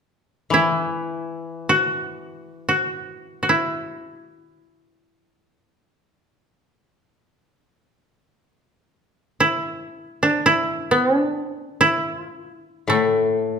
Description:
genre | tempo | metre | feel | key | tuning
japanese traditional, Japanese chamber music | free time | none | none | unclear | A4 = 442 Hz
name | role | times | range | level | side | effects
koto | melody | 0.5-13.6 s | A3 to F#4 | -19 LUFS | right 1 dB | none
koto | accompaniment | 0.5-3.4, 12.9-13.6 s | A2 to E3 | -24 LUFS | left 5 dB | none
room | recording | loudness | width
moderate recital hall reverb, RT60 1.4 s | minimal, uncompressed stereo recording | -19 LUFS | side -6 dB against mid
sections
0.0-13.6 A section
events
none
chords
none

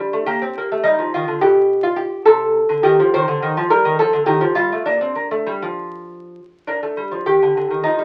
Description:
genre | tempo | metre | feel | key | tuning
classical, baroque-style dance for lute | 69 BPM (dotted quarters) | 6/8 | rubato | Bb major from 3.1 s | A4 = 440 Hz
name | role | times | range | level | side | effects
lute | solo | 0.0-8.0 s | B2 to C5 | -18 LUFS | equal | none
room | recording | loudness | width
wet studio reverb, RT60 0.6 s | very old 78 rpm record, vinyl crackle | -17 LUFS | mono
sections
0.0-6.7 A section; 6.7-8.0 A section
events
none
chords
0.0 Gm; 1.4 N.C.; 2.3 Cm; 3.1 Eb; 4.0 F; 4.9 Bb; 6.7 G5

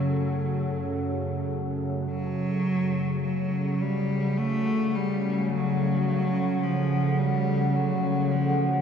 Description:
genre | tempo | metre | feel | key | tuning
dark ambient drone | 53 BPM | 4/4 | straight | unclear | A4 = 441 Hz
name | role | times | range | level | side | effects
rich cello | melody | 0.0-8.8 s | E#3 to A3 | -28 LUFS | right 1 dB | tape echo
dark analog pad | sustained chords | 0.0-8.8 s | C#4 to F#5 | -31 LUFS | right 1 dB | chorus
bowed-like drone | drone | 0.0-8.8 s | F#2 to C#3 | -27 LUFS | left 1 dB | built-in reverb
wind-like tuned noise texture | texture | 0.0-2.1 s | A4 | -45 LUFS | right 1 dB | built-in reverb
room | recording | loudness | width
wet cathedral reverb, RT60 4.7 s | in a vast, echoing space | -24 LUFS | side -7 dB against mid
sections
0.0-2.1 A section; 2.1-8.8 A section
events
none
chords
0.0 F#m

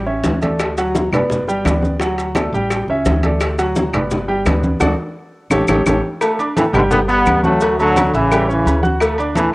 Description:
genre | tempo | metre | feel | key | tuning
latin, salsa | 171 BPM | 4/4 | straight | D major | A4 = 440 Hz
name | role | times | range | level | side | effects
upright bass | bass | 0.0-9.5 s | G1 to D2 | -22 LUFS | equal | none
clear grand piano | accompaniment | 0.1-9.5 s | F#3 to F#6 | -19 LUFS | right 1 dB | cassette tape
bongos and cowbell | percussion | 0.1-9.5 s | none | -23 LUFS | left 2 dB | none
congas | percussion | 0.1-9.5 s | none | -21 LUFS | equal | none
maracas | percussion | 0.2-9.5 s | none | -34 LUFS | left 2 dB | none
timbales and agogo bells | percussion | 0.2-9.5 s | none | -26 LUFS | right 2 dB | none
claves | percussion | 0.6-9.2 s | none | -27 LUFS | left 2 dB | none
bright trombone section | melody | 6.6-9.5 s | A2 to B3 | -15 LUFS | equal | cassette tape
room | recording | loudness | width
moderate spring reverb, RT60 1.6 s, small room ambience | home recording on cassette | -14 LUFS | side -21 dB against mid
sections
0.0-6.2 A section; 6.2-9.5 B section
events
band accent 4.8-6.2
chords
0.0 A; 0.6 D; 1.3 G; 2.0 D; 2.7 A7; 3.4 D; 4.1 G; 4.8 D; 5.5 A7; 6.2 D5; 6.9 G; 7.6 D; 8.3 A7; 9.0 D5

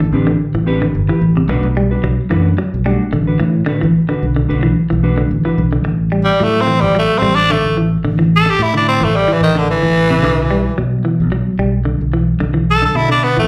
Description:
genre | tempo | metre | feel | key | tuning
afrobeat | 110 BPM | 4/4 | swing 54% on 16ths | A dorian | A4 = 441 Hz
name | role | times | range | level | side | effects
semi-hollow electric guitar | arpeggios | 0.0-13.5 s | C3 to G3 | -20 LUFS | equal | none
fingered electric bass | bass | 0.0-13.5 s | G1 to B2 | -18 LUFS | equal | none
mellow electric guitar | stabs | 0.1-5.6 s | A3 to B4 | -24 LUFS | equal | analog chorus, slapback echo
raspy tenor saxophone | melody | 6.2-13.5 s | D3 to A4 | -16 LUFS | equal | slapback echo
room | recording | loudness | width
light reverb | live gig heard through the venue's PA, club reverb | -14 LUFS | mono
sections
0.0-5.8 A section; 5.8-13.5 B section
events
tenor saxophone solo 5.8-13.5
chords
0.0 Am11; 1.5 Bm7; 5.8 A5; 10.2 Bm

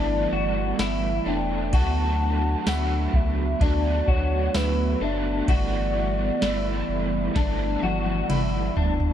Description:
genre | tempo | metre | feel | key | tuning
dream pop | 64 BPM | 4/4 | straight | unclear | A4 = 444 Hz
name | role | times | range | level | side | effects
hollow clarinet-like synth lead | melody | 0.0-8.3 s | B4 to A5 | -30 LUFS | left 1 dB | chorus, tremolo, digital delay
crunchy overdriven guitar | accompaniment | 0.0-9.1 s | D3 to A4 | -32 LUFS | right 4 dB | tremolo, ensemble chorus
hollow soft pad | sustained chords | 0.0-9.1 s | E3 to F#4 | -30 LUFS | right 4 dB | chorus
electric guitar at the edge of break-up | arpeggios | 0.0-9.1 s | D4 to F#4 | -30 LUFS | left 6 dB | ensemble chorus, digital delay
sub bass with octave | bass | 0.0-9.1 s | E1 to D2 | -27 LUFS | equal | none
soft vintage rhythm box | drums | 0.8-9.1 s | kick drum, ride cymbal, snare drum, tambourine, toms | -25 LUFS | equal | none
vibraphone with soft mallets | texture | 1.3-9.1 s | C#5 to E5 | -40 LUFS | left 3 dB | none
room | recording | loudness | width
light reverb, digital ambience | dark, warm production | -21 LUFS | side -10 dB against mid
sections
0.0-9.1 A section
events
drum fill 7.4-9.1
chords
0.0 G69; 1.7 D6; 5.5 G69

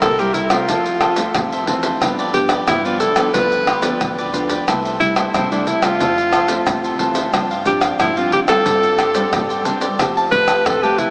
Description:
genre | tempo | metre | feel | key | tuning
samba and choro | 90 BPM | 4/4 | straight | C major | A4 = 440 Hz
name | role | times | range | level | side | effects
clear alto saxophone | melody | 0.0-11.1 s | C4 to B4 | -21 LUFS | equal | tape echo
cavaquinho | accompaniment | 0.0-11.1 s | D4 to A5 | -25 LUFS | equal | none
nylon-string guitar | accompaniment | 0.0-11.1 s | F2 to G4 | -26 LUFS | equal | none
upright bass | bass | 0.0-11.1 s | C2 to G3 | -37 LUFS | equal | none
egg shaker, surdo, pandeiro and tamborim | percussion | 0.0-11.1 s | none | -22 LUFS | equal | none
room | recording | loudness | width
wet huge ambient reverb, RT60 4.8 s | dreamy mix soaked in reverb, small speaker sound | -17 LUFS | mono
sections
0.0-11.1 A section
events
none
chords
0.0 C7; 0.7 Fmaj7; 2.0 G7; 4.7 C6; 6.0 Fmaj7; 7.3 G7sus4; 8.7 Csus2/G; 10.0 Fadd9

